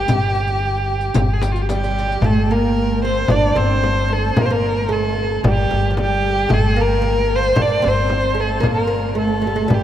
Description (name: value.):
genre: Arabic maqam ensemble.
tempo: 112 BPM.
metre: 4/4.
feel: straight.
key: G maqam bayati.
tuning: A4 = 443 Hz.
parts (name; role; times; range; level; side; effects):
rich violin; melody; 0.0-9.8 s; F4 to D5; -20 LUFS; equal; none.
oud; second line; 0.0-9.8 s; F3 to D4; -22 LUFS; right 2 dB; none.
upright bass; bass; 0.0-9.8 s; G1; -21 LUFS; equal; none.
frame drum; percussion; 0.1-9.8 s; none; -22 LUFS; left 2 dB; none.
riq; percussion; 0.1-2.2 s; none; -33 LUFS; left 5 dB; none.
room: wet cathedral reverb, RT60 5.5 s.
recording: in a vast, echoing space.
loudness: -15 LUFS.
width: side -11 dB against mid.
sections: 0.0-2.2 A section; 2.2-9.8 B section.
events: none.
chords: none.